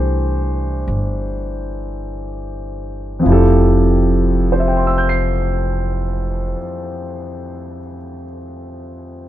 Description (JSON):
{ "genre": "jazz ballad", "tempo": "47-57 BPM", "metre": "4/4", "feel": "swing 69% on 8ths", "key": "F major", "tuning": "A4 = 441 Hz", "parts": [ { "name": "clear concert grand piano", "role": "accompaniment", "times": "0.0-9.3 s", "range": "F2 to C7", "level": "-19 LUFS", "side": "equal", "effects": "none" }, { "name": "upright bass", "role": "bass", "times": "0.0-6.5 s", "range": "F1 to C2", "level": "-18 LUFS", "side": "right 1 dB", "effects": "none" } ], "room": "little or no reverb", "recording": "dry, close 1970s-style studio recording", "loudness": "-15 LUFS", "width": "side -13 dB against mid", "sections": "0.0-3.2 A section; 3.2-8.3 B section", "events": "slowing down 0.0-3.2", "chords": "0.0 C; 3.2 Fmaj7" }